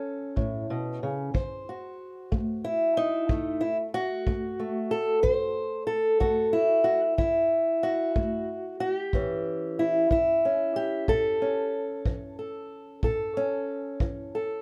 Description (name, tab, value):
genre	acoustic country blues, solo or duo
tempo	62 BPM (dotted quarters)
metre	12/8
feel	straight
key	A mixolydian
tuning	A4 = 440 Hz
part	fingerpicked old ladder-braced acoustic guitar	melody	0.0-14.6 s	A2 to C5	-28 LUFS	equal	none
part	kick drum	drums	0.4-14.2 s	none	-33 LUFS	equal	none
room	light reverb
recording	none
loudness	-27 LUFS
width	mono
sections	0.0-14.6 A section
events	none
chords	0.0 A; 1.3 D7; 9.1 A7